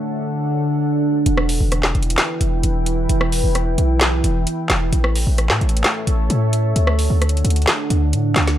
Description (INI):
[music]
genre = hip hop, trap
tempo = 131 BPM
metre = 4/4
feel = half-time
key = unclear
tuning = A4 = 440 Hz
[part]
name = deep dark ambient pad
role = sustained chords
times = 0.0-8.6 s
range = D3 to G5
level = -22 LUFS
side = right 1 dB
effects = chorus, built-in reverb
[part]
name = hard-hitting 808-style bass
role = bass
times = 1.3-8.6 s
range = E1 to A2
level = -17 LUFS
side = equal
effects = none
[part]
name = trap drum kit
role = drums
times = 1.3-8.6 s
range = handclaps, hi-hat, rim click, snare drum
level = -20 LUFS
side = equal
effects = none
[sound]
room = little or no reverb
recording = none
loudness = -16 LUFS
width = side -12 dB against mid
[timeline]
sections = 0.0-8.6 A section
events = none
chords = 0.0 D; 1.3 Em; 4.9 A; 6.8 D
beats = 0.35 0.80 | 1.26 1.72 2.18 2.64 | 3.09 3.55 4.01 4.47 | 4.93 5.38 5.84 6.30 | 6.76 7.22 7.67 8.13